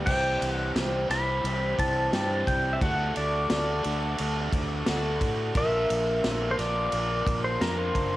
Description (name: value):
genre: folk rock and heartland rock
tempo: 88 BPM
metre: 4/4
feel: straight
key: C lydian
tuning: A4 = 440 Hz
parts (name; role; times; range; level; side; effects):
- picked twelve-string acoustic guitar; accompaniment; 0.0-8.2 s; Bb2 to C5; -31 LUFS; left 1 dB; cassette tape
- bright tonewheel organ; sustained chords; 0.0-8.2 s; none; barely audible; none; none
- crunchy overdriven guitar; riff; 0.0-8.2 s; Bb2 to G4; -33 LUFS; right 1 dB; cassette tape
- fingered electric bass; bass; 0.0-8.2 s; F#1 to A2; -32 LUFS; equal; none
- pedal steel guitar; melody; 0.1-8.2 s; Bb4 to B5; -30 LUFS; equal; tape echo
- natural country drum kit; drums; 0.1-8.1 s; crash cymbal, kick drum, ride cymbal, snare drum; -31 LUFS; equal; cassette tape
room: light reverb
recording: home recording on cassette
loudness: -24 LUFS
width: side -16 dB against mid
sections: 0.0-8.2 A section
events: none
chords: 0.1 C; 2.8 D; 5.6 Bb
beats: | 0.07 0.76 1.44 2.13 | 2.81 3.50 4.19 4.87 | 5.56 6.24 6.93 7.61